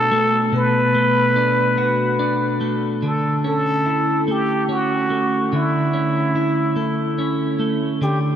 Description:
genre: pop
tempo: 48 BPM (dotted quarters)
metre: 6/8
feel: straight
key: unclear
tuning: A4 = 441 Hz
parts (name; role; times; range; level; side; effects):
- trumpet with plunger mute; melody; 0.0-8.2 s; E4 to B4; -20 LUFS; equal; analog delay
- twelve-string electric guitar; accompaniment; 0.0-8.4 s; B2 to F#4; -20 LUFS; equal; spring reverb
room: wet huge ambient reverb, RT60 4.2 s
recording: dreamy mix soaked in reverb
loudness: -17 LUFS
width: side -9 dB against mid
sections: 0.0-3.0 A section; 3.0-8.4 B section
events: none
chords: 0.0 Bm7; 3.0 A/D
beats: | 0.54 1.78 | 3.03 4.27 | 5.52 6.76 | 8.01

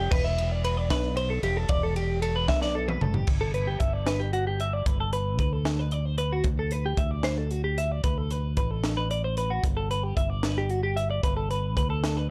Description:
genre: math rock and midwest emo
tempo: 75 BPM (dotted quarters)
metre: 6/8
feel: straight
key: G major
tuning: A4 = 441 Hz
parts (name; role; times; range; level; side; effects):
- twelve-string electric guitar; arpeggios; 0.0-12.3 s; F#4 to E5; -32 LUFS; equal; plate reverb
- fingered electric bass; bass; 0.0-12.3 s; E1 to D2; -31 LUFS; equal; none
- crisp fusion drum kit; drums; 0.1-12.2 s; crash cymbal, hi-hat, kick drum, ride cymbal, snare drum, toms; -31 LUFS; equal; none
room: light reverb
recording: dark, warm production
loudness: -27 LUFS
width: mono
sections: 0.0-3.3 A section; 3.3-12.3 B section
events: drum fill 2.5-3.3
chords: 0.1 Em7; 3.3 Gmaj7; 6.5 Dsus4; 9.6 G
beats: | 0.11 0.90 | 1.69 2.48 | 3.27 4.07 | 4.86 5.66 | 6.45 7.25 | 8.04 8.84 | 9.64 10.43 | 11.23 12.03

